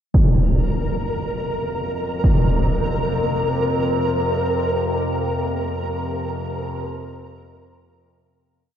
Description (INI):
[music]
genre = dark ambient drone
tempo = free time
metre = none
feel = none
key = unclear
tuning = A4 = 440 Hz
[part]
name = impact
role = percussion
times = 0.1-2.4 s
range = none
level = -20 LUFS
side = equal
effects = low-pass filter on sfx
[part]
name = flickering grainy texture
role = texture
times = 0.6-8.6 s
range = Bb4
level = -24 LUFS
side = equal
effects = built-in reverb
[part]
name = overtone-sweeping drone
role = drone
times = 1.2-8.6 s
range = F2 to C3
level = -26 LUFS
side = left 1 dB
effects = chorus, built-in reverb
[sound]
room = moderate huge ambient reverb, RT60 9.0 s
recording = dark, warm production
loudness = -19 LUFS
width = side -9 dB against mid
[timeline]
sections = 0.1-8.5 A section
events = fade-in on synth drone 0.1-8.5; fade-out 4.3-8.5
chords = 0.1 F5